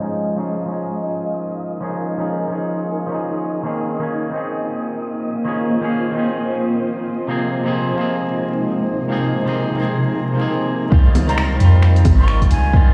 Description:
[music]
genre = future garage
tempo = 132 BPM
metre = 4/4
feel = swing 61% on 16ths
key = Bb dorian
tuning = A4 = 442 Hz
[part]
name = clean electric guitar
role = accompaniment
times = 0.0-12.9 s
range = C3 to Ab4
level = -25 LUFS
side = equal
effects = sidechain pumping, low-pass filter, analog delay
[part]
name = granular cloud pad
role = sustained chords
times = 0.0-12.9 s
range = C3 to Ab5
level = -26 LUFS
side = equal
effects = built-in reverb, sidechain pumping
[part]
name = wind-like tuned noise texture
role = texture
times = 0.0-10.9 s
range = Eb5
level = -33 LUFS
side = equal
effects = built-in reverb
[part]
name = soft 808-style bass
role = bass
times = 10.9-12.9 s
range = Ab1 to F2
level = -16 LUFS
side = equal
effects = tube saturation, sidechain pumping
[part]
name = electronic kick drum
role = drums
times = 10.9-12.8 s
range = none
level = -15 LUFS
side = equal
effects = overdrive
[part]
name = deep house drum kit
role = drums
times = 11.2-12.6 s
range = bongos, finger snaps, hi-hat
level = -27 LUFS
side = equal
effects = overdrive
[part]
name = breathy mellow jazz flute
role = melody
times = 11.3-12.8 s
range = Ab5 to Db6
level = -27 LUFS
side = equal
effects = analog delay
[sound]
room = light reverb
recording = played on a big sound system in a bare room, large studio reverb, vinyl crackle, low-pass filter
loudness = -19 LUFS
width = mono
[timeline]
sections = 0.0-10.9 A section; 10.9-12.9 B section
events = filter sweep on ambient pad 0.0-10.9; filter sweep on clean electric guitar 0.0-10.9; filter sweep 0.0-10.9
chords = 0.0 Eb9sus4; 3.6 Bbm11; 7.3 Ab69/C; 10.9 Dbmaj9#11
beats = | 0.01 0.47 0.92 1.38 | 1.83 2.29 2.74 3.19 | 3.65 4.10 4.56 5.01 | 5.47 5.92 6.38 6.83 | 7.29 7.74 8.19 8.65 | 9.10 9.56 10.01 10.47 | 10.92 11.38 11.83 12.29 | 12.74

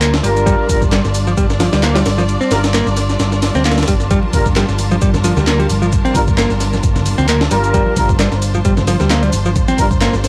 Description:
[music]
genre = breakbeat, breaks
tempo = 132 BPM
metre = 4/4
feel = swing 55% on 16ths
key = G minor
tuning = A4 = 441 Hz
[part]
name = clear studio string section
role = sustained chords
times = 0.0-10.3 s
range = G3 to A5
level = -25 LUFS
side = equal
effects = sidechain pumping
[part]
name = modern bright picked electric bass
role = riff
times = 0.0-10.1 s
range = F3 to C4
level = -21 LUFS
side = equal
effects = tube saturation, tape echo
[part]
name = picked electric bass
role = bass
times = 0.0-10.3 s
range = G1 to D2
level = -20 LUFS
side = equal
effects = none
[part]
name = breakbeat sampler-style drum kit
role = drums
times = 0.0-10.3 s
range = hi-hat, kick drum, snare drum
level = -20 LUFS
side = equal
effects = small room ambience
[part]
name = punchy analog drum machine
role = drums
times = 0.0-10.3 s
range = handclaps, hi-hat, shaker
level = -27 LUFS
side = equal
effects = small room ambience
[part]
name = dark brass ensemble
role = stabs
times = 0.2-9.9 s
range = G3 to Bb4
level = -21 LUFS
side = equal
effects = tape echo
[part]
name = congas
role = percussion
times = 4.2-10.1 s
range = none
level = -28 LUFS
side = equal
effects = none
[sound]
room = digital ambience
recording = dry, gritty hardware recording, cassette tape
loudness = -14 LUFS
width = mono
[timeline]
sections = 0.0-10.3 A section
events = none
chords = 0.0 Gm7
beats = 0.01 | 0.47 0.92 1.38 1.83 | 2.29 2.74 3.19 3.65 | 4.10 4.56 5.01 5.47 | 5.92 6.38 6.83 7.29 | 7.74 8.20 8.65 9.10 | 9.56 10.01

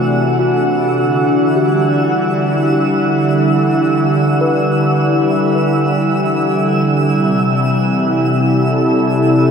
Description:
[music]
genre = ambient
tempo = free time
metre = none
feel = none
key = E minor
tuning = A4 = 436 Hz
[part]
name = warm analog pad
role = sustained chords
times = 0.0-9.5 s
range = C3 to F#5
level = -13 LUFS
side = equal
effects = lush chorus
[part]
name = celesta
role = arpeggios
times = 0.0-9.5 s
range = F#4 to B4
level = -22 LUFS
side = equal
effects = ping-pong delay
[part]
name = overtone-sweeping drone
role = drone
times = 0.0-9.5 s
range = E3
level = -25 LUFS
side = right 2 dB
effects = chorus, built-in reverb
[part]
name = twinkling granular texture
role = texture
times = 0.0-9.5 s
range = E6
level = -23 LUFS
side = right 2 dB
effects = built-in reverb
[sound]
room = wet shimmer reverb, RT60 7.0 s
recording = dark, warm production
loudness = -12 LUFS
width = side -6 dB against mid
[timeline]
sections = 0.0-9.5 A section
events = fade-in on synth texture 0.0-9.5; fade-out on celesta 0.0-9.5; fade-out on synth drone 0.0-9.5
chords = 0.0 D7; 1.0 Em9; 7.1 Am7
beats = free time

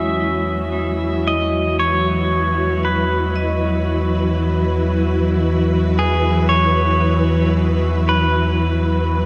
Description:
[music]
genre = ambient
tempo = 57 BPM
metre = 4/4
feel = straight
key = unclear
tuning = A4 = 440 Hz
[part]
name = pedal steel guitar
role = melody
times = 0.0-9.3 s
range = G#4 to E5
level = -24 LUFS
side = equal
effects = tape echo
[part]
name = dark studio string section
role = sustained chords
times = 0.0-9.3 s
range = E3 to B4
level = -22 LUFS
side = equal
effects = none
[part]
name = vibraphone with hard mallets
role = arpeggios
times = 0.0-9.3 s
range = G#3 to D#6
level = -30 LUFS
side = equal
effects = tape echo
[part]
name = warm sub bass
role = bass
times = 0.0-9.3 s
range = E2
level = -23 LUFS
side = equal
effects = none
[sound]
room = wet cathedral reverb, RT60 6.6 s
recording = in a vast, echoing space, cassette tape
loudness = -18 LUFS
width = mono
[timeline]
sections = 0.0-9.3 A section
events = none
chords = 0.0 Emaj9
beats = 0.73 | 1.78 2.83 3.89 4.94 | 5.99 7.04 8.10 9.15

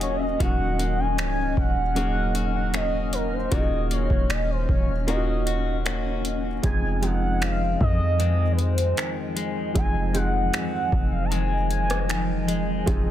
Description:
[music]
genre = contemporary R&B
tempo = 77 BPM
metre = 4/4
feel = straight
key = F phrygian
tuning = A4 = 438 Hz
[part]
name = gliding portamento lead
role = melody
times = 0.0-12.4 s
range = Bb4 to Bb5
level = -29 LUFS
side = equal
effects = chorus, phaser, digital delay
[part]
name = felt-muted upright piano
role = accompaniment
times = 0.0-13.1 s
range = F3 to Ab4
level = -32 LUFS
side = right 3 dB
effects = none
[part]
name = granular cloud pad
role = sustained chords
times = 0.0-13.1 s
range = F3 to F6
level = -31 LUFS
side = left 1 dB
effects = built-in reverb
[part]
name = direct-recorded clean electric guitar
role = arpeggios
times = 0.0-13.1 s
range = F2 to Gb4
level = -32 LUFS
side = left 8 dB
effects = digital delay
[part]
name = warm 808-style bass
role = bass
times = 0.0-13.1 s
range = Db1 to F2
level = -25 LUFS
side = equal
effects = none
[part]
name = booming analog drum machine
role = drums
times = 0.0-13.1 s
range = finger snaps, hi-hat, kick drum, rim click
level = -26 LUFS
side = equal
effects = soft clipping on snare
[sound]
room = digital ambience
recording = dense, heavily limited modern master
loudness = -21 LUFS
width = side -12 dB against mid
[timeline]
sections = 0.0-6.6 A section; 6.6-13.1 B section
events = none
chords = 0.0 Ebm7; 6.6 Fm7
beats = | 0.40 1.18 1.96 2.74 | 3.52 4.30 5.08 5.86 | 6.64 7.42 8.20 8.97 | 9.75 10.53 11.31 12.09 | 12.87

